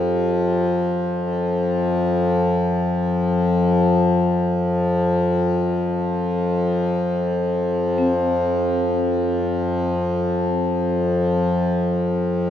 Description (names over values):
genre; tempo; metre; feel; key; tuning
world meditative, free-time meditation music; free time; none; none; unclear; A4 = 443 Hz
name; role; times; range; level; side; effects
hand-pumped harmonium; drone; 0.0-12.5 s; F2 to F3; -18 LUFS; left 1 dB; none
vibraphone with soft mallets; texture; 0.0-0.6, 8.0-12.5 s; C4 to G4; -28 LUFS; right 1 dB; stereo widening
room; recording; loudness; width
wet recital hall reverb, RT60 1.8 s; none; -18 LUFS; side -10 dB against mid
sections
0.0-12.5 A section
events
none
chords
none